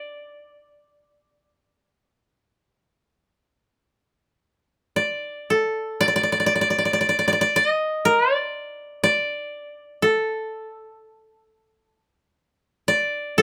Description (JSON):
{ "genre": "japanese traditional", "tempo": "57-64 BPM", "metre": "4/4", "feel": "rubato", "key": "unclear", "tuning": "A4 = 440 Hz", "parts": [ { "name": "koto", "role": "solo", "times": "0.0-13.4 s", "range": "A4 to Eb5", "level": "-22 LUFS", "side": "equal", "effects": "none" } ], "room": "light reverb", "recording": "none", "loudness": "-22 LUFS", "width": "mono", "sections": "0.0-6.0 A section; 6.0-13.4 B section", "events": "none", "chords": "none" }